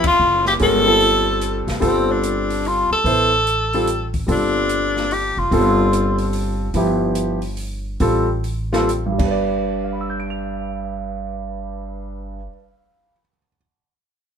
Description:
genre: modal jazz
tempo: 124-146 BPM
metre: 3/4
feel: swing 64% on 8ths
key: G mixolydian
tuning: A4 = 440 Hz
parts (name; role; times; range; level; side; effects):
- clear tenor saxophone; melody; 0.0-6.3 s; C4 to A4; -18 LUFS; left 1 dB; none
- upright bass; bass; 0.0-12.5 s; F#1 to A1; -24 LUFS; equal; none
- open jazz drum kit; drums; 0.0-9.3 s; crash cymbal, hi-hat, kick drum, ride cymbal, snare drum; -30 LUFS; left 1 dB; none
- warm grand piano; accompaniment; 0.6-13.6 s; G2 to F7; -21 LUFS; equal; none
room: moderate club reverb, RT60 0.8 s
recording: minimal, uncompressed stereo recording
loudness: -16 LUFS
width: side -7 dB against mid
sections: 0.0-6.7 A section; 6.7-9.4 B section; 9.4-12.3 C section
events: band accent 0.0; slowing down 6.7-9.4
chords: 0.0 G9sus4; 1.8 Dm/G; 6.7 G13; 9.1 G

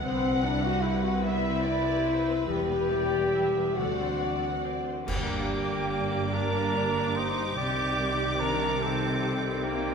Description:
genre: cinematic, emotional film score for orchestra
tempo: 48 BPM (dotted quarters)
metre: 6/8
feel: rubato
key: G minor from 5.1 s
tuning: A4 = 438 Hz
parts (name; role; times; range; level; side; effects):
- dark symphonic violin section; melody; 0.0-9.9 s; B4 to D6; -37 LUFS; left 2 dB; none
- dark symphonic violin section; second line; 0.0-9.9 s; Bb3 to F#5; -36 LUFS; left 2 dB; none
- warm symphonic viola section; accompaniment; 0.0-9.9 s; Eb3 to F#5; -36 LUFS; right 2 dB; none
- mellow French horn section; sustained chords; 0.0-9.9 s; G3 to D5; -30 LUFS; left 2 dB; none
- concert harp; arpeggios; 0.0-9.9 s; G2 to C5; -37 LUFS; left 6 dB; none
- rich symphonic cello section; bass; 0.0-9.9 s; C2 to C3; -34 LUFS; right 3 dB; none
- warm symphonic double bass section; bass; 0.0-9.9 s; E1 to D2; -36 LUFS; right 3 dB; none
- cymbal swell, clash cymbals and concert bass drum; percussion; 2.5-6.7 s; none; -37 LUFS; right 1 dB; none
- clear oboe; second line; 5.1-9.9 s; Bb3 to G4; -37 LUFS; right 2 dB; none
- dark clarinet; second line; 5.1-9.9 s; G4 to D5; -34 LUFS; right 2 dB; none
- silver concert flute; second line; 5.1-9.9 s; G5 to D6; -35 LUFS; equal; none
room: wet scoring stage reverb, RT60 1.7 s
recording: minimal, uncompressed stereo recording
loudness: -25 LUFS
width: side -6 dB against mid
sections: 0.0-5.1 A section; 5.1-9.9 B section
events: band accent 5.1-5.9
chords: 0.0 Cmaj7; 2.5 Em; 3.8 D7; 5.1 Gm; 7.6 Cmadd9

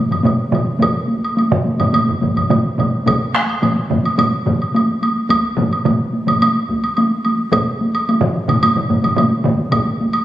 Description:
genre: japanese traditional, taiko drum ensemble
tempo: 108 BPM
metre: 4/4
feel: straight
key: none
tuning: none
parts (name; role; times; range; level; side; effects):
- solo taiko drums; percussion; 0.1-10.2 s; none; -18 LUFS; equal; none
- taiko ensemble; percussion; 0.1-9.9 s; none; -22 LUFS; left 2 dB; none
- taiko ensemble; percussion; 0.1-9.8 s; none; -20 LUFS; right 2 dB; none
- woodblock; percussion; 0.1-10.2 s; none; -20 LUFS; right 1 dB; none
- taiko ensemble; percussion; 0.8-9.9 s; none; -25 LUFS; right 1 dB; none
room: wet recital hall reverb, RT60 1.6 s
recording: recorded on a phone in the room, club ambience, compression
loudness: -14 LUFS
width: side -13 dB against mid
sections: 0.0-10.2 A section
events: speeding up 0.0-10.2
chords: none

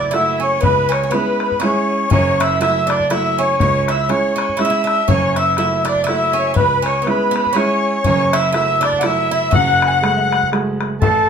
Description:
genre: celtic folk, Celtic waltz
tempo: 121 BPM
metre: 3/4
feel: swing 58% on 8ths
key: F# minor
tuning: A4 = 437 Hz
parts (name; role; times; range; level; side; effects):
- mellow accordion; melody; 0.0-11.3 s; A4 to F#5; -17 LUFS; right 1 dB; none
- Irish bouzouki; second line; 0.0-11.3 s; A3 to F#4; -26 LUFS; right 6 dB; none
- musette accordion; second line; 0.0-11.3 s; A4 to G#5; -22 LUFS; left 5 dB; none
- bright grand piano; accompaniment; 0.0-11.3 s; F#1 to F#4; -20 LUFS; right 3 dB; none
- bodhran; percussion; 0.0-11.1 s; none; -21 LUFS; left 4 dB; none
room: moderate studio reverb, RT60 0.5 s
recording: minimal, uncompressed stereo recording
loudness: -14 LUFS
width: side -7 dB against mid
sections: 0.0-11.0 A section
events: none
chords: 0.0 F#m7; 0.6 C#m; 2.1 F#m7; 3.6 C#m; 5.1 F#m7; 6.6 C#m; 8.0 F#m7; 9.5 F#madd9

